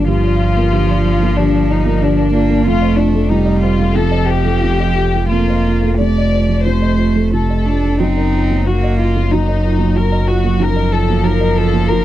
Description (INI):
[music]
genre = neoclassical piano and strings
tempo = 92 BPM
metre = 4/4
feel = rubato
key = unclear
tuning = A4 = 436 Hz
[part]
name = warm chamber violin section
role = melody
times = 0.0-12.0 s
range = D4 to D5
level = -19 LUFS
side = left 5 dB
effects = none
[part]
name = warm cello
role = second line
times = 0.0-12.0 s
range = F3 to D4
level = -18 LUFS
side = right 4 dB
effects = none
[part]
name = felt-muted upright piano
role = accompaniment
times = 0.0-12.0 s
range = F2 to Eb5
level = -19 LUFS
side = right 5 dB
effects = none
[part]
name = sub bass with octave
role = bass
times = 0.0-12.0 s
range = F1 to G1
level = -17 LUFS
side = left 1 dB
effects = none
[part]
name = folk marimba with soft mallets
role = arpeggios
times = 0.1-12.0 s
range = Eb4 to F5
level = -27 LUFS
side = left 11 dB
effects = none
[sound]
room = small room reverb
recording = dry, close 1970s-style studio recording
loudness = -12 LUFS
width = side -13 dB against mid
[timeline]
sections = 0.0-12.0 A section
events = none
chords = 0.0 Gm7; 2.7 F7; 8.0 Ebmadd9/Gb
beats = | 0.08 0.73 1.38 2.03 | 2.66 3.30 3.94 4.60 | 5.29 5.98 6.65 7.32 | 8.00 8.66 9.31 9.96 | 10.60 11.24 11.89